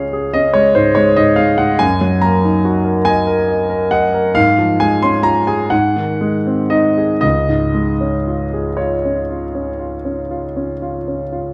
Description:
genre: classical, romantic nocturne for solo piano.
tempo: 38-48 BPM (dotted quarters).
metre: 12/8.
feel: rubato.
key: Db major.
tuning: A4 = 441 Hz.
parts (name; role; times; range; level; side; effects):
clear grand piano; solo; 0.0-11.5 s; Db2 to C6; -16 LUFS; equal; none.
room: moderate recital hall reverb, RT60 1.6 s.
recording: dark, warm production, tape saturation.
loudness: -15 LUFS.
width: mono.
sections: 0.0-11.5 A section.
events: none.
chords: 0.0 Db; 1.8 Ebm/Gb; 4.4 Db/Ab; 5.7 Ab7; 7.2 Db.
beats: 0.55 | 1.80 3.06 4.36 5.72 | 7.23 8.78 10.30.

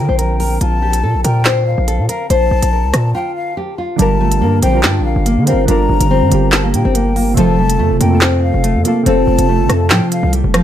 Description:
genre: hip hop, drill.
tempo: 142 BPM.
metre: 4/4.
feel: half-time.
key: G minor.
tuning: A4 = 440 Hz.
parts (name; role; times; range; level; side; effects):
nylon-string guitar; melody; 0.0-10.6 s; F3 to C5; -17 LUFS; left 2 dB; analog delay.
breathy hollow jazz flute; second line; 0.0-10.3 s; F5 to Bb5; -22 LUFS; left 5 dB; analog delay.
glassy digital keys; accompaniment; 0.0-10.6 s; C3 to C5; -19 LUFS; right 3 dB; chorus, analog delay.
distorted 808-style bass; bass; 0.0-10.6 s; F1 to D3; -15 LUFS; equal; distortion.
drill drum kit; drums; 0.2-10.6 s; handclaps, hi-hat, rim click, snare drum; -17 LUFS; right 1 dB; none.
room: small room ambience.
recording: echo-heavy mix.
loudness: -11 LUFS.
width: side -10 dB against mid.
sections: 0.0-4.0 A section; 4.0-10.6 B section.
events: break 3.1-4.0.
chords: 0.0 Bbadd9; 4.0 Gm7; 7.4 F.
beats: 0.19 | 0.61 1.03 1.46 1.88 | 2.30 2.72 3.15 3.57 | 3.99 4.42 4.84 5.26 | 5.68 6.11 6.53 6.95 | 7.37 7.79 8.22 8.64 | 9.06 9.48 9.91 10.33.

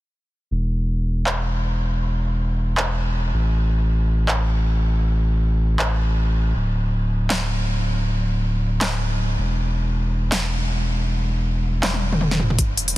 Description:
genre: future bass.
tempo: 159 BPM.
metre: 4/4.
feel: swing 56% on 16ths, half-time.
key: unclear.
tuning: A4 = 438 Hz.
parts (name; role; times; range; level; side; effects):
saturated sub bass; bass; 0.5-13.0 s; D1 to A1; -20 LUFS; equal; sidechain pumping.
big-room dance drum kit; drums; 1.3-12.9 s; handclaps, hi-hat, snare drum, toms; -25 LUFS; equal; overdrive.
electronic kick drum; drums; 12.6-12.7 s; none; -20 LUFS; equal; none.
room: little or no reverb.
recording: dense, heavily limited modern master.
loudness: -19 LUFS.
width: side -17 dB against mid.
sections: 0.5-12.6 A section.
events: drum fill 11.8-12.6.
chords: none.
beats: | 0.51 0.89 1.27 1.64 | 2.02 2.40 2.78 3.15 | 3.53 3.91 4.29 4.66 | 5.04 5.42 5.79 6.17 | 6.55 6.93 7.30 7.68 | 8.06 8.44 8.81 9.19 | 9.57 9.95 10.32 10.70 | 11.08 11.46 11.83 12.21 | 12.59 12.96.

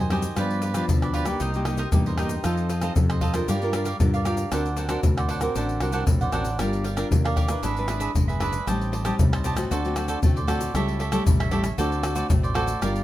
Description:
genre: samba and choro.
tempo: 116 BPM.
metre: 4/4.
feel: straight.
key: unclear.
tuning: A4 = 439 Hz.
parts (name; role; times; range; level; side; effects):
cavaquinho; accompaniment; 0.0-13.0 s; D4 to A5; -29 LUFS; right 3 dB; none.
nylon-string guitar; accompaniment; 0.0-13.0 s; G2 to B4; -28 LUFS; left 2 dB; none.
mellow fretless electric bass; bass; 0.0-13.0 s; F#1 to G2; -28 LUFS; equal; none.
pandeiro, tamborim, tube shaker and surdo; percussion; 0.1-13.0 s; none; -24 LUFS; left 1 dB; none.
room: light reverb.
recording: minimal, uncompressed stereo recording.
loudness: -21 LUFS.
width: side -14 dB against mid.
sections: 0.0-13.0 A section.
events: none.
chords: 0.4 G7; 1.4 Cm7; 2.4 F7; 3.5 Gm7; 4.5 D7b13; 6.6 Gm7; 7.6 E7/G#; 8.7 Am7b5; 9.7 D7; 10.7 A7/C#; 11.8 D7.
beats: | 0.37 0.89 1.41 1.93 | 2.45 2.97 3.48 4.00 | 4.52 5.04 5.56 6.08 | 6.60 7.12 7.63 8.15 | 8.67 9.19 9.71 10.23 | 10.75 11.27 11.79 12.30 | 12.82.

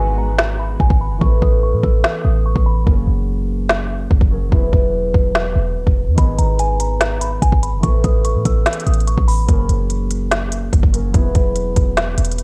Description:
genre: hip hop, trap.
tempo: 145 BPM.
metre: 4/4.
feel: half-time.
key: G# minor.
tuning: A4 = 440 Hz.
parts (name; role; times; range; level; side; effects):
delicate synth tine bell; melody; 0.0-2.8, 6.2-9.5 s; G#5 to E6; -29 LUFS; equal; chorus, low-pass filter, tape echo.
concert harp; accompaniment; 0.0-12.4 s; D#3 to B4; -26 LUFS; equal; low-pass filter, cassette tape.
clean 808-style bass; bass; 0.0-12.4 s; D#1 to A2; -20 LUFS; equal; none.
organic electronic drum kit; drums; 0.4-12.4 s; hi-hat, kick drum, snare drum; -19 LUFS; equal; overdrive, cassette tape.
room: little or no reverb.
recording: home recording on cassette.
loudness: -16 LUFS.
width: mono.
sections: 0.0-12.4 A section.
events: break 0.0-6.2; filter sweep 0.0-12.4.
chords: 0.0 G#m; 1.2 Aadd9; 2.9 F#add9; 4.5 Eadd9; 6.2 G#m; 7.8 Aadd9; 9.5 F#add9; 11.1 Eadd9.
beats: 0.39 0.80 | 1.21 1.63 2.04 2.45 | 2.87 3.28 3.69 4.11 | 4.52 4.94 5.35 5.76 | 6.18 6.59 7.00 7.42 | 7.83 8.25 8.66 9.07 | 9.49 9.90 10.32 10.73 | 11.14 11.56 11.97 12.38.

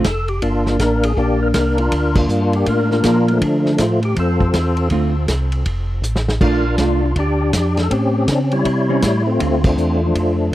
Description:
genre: soul jazz organ trio.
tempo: 160 BPM.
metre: 4/4.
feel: swing 64% on 8ths.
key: D minor.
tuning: A4 = 440 Hz.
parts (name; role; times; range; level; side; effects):
percussive tonewheel organ; melody; 0.0-10.5 s; F3 to C#5; -18 LUFS; left 1 dB; slow rotary speaker, overdrive, chorus vibrato, tape echo.
vintage hollow-body jazz guitar; accompaniment; 0.0, 3.0-9.6 s; D3 to F4; -19 LUFS; right 3 dB; none.
mellow tonewheel organ; bass; 0.0-10.5 s; F1 to D3; -19 LUFS; equal; slow rotary speaker.
warm soul drum kit; drums; 0.0-10.3 s; crash cymbal, hi-hat, kick drum, ride cymbal, snare drum; -21 LUFS; equal; none.
room: little or no reverb.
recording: dry, close 1970s-style studio recording.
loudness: -14 LUFS.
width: side -14 dB against mid.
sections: 0.0-10.5 A section.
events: band accent 2.1, 9.6; drum fill 6.0-6.4.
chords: 0.4 Gm7; 3.4 Dm7; 6.4 Bbmaj7; 7.9 A7#9; 9.4 Dm7.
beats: 0.04 | 0.41 0.79 1.16 1.54 | 1.91 2.29 2.66 3.04 | 3.41 3.79 4.16 4.54 | 4.91 5.28 5.66 6.03 | 6.41 6.78 7.16 7.53 | 7.91 8.28 8.65 9.03 | 9.40 9.78 10.15 10.53.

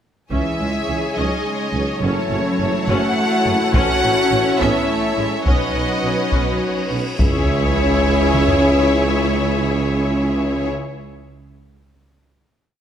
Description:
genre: cinematic, epic orchestral film score.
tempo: 70 BPM (dotted quarters).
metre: 6/8.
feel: straight.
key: C# minor.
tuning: A4 = 441 Hz.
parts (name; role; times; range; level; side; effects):
clear studio violin section; melody; 0.3-10.7 s; C#5 to F#5; -24 LUFS; left 2 dB; none.
warm symphonic violin section; second line; 0.3-10.7 s; C#5 to A5; -27 LUFS; left 2 dB; none.
warm symphonic viola section; accompaniment; 0.3-10.7 s; C#4 to B4; -26 LUFS; right 1 dB; none.
clear trombone section; sustained chords; 0.3-10.7 s; C#3 to C#4; -28 LUFS; right 4 dB; none.
dark French horn section; sustained chords; 0.3-10.7 s; C#4 to F#4; -25 LUFS; left 5 dB; none.
warm symphonic string section; sustained chords; 0.3-10.7 s; C#4 to C#5; -27 LUFS; left 2 dB; none.
warm symphonic cello section; bass; 0.3-10.7 s; C#2 to C#4; -25 LUFS; right 2 dB; none.
warm symphonic double bass section; bass; 0.3-10.7 s; F#1 to C#2; -26 LUFS; right 2 dB; none.
warm tuba; bass; 0.3-10.7 s; F#1 to C#2; -26 LUFS; right 4 dB; none.
taiko ensemble; drums; 0.3-8.6 s; none; -20 LUFS; equal; none.
cymbal swell and sub drop; sound effects; 6.6-8.9 s; none; -29 LUFS; equal; none.
room: moderate scoring stage reverb, RT60 1.6 s.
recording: none.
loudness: -16 LUFS.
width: side -9 dB against mid.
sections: 0.3-7.2 theme; 7.2-10.6 final chord.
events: cymbal swell 6.6-7.2; impact 7.2-8.9.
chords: 0.3 C#m; 2.0 F#m7; 3.7 A; 5.5 Badd9; 7.2 C#m.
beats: | 0.32 1.18 | 2.03 2.90 | 3.75 4.60 | 5.46 6.33 | 7.20 8.06 | 8.91 9.77.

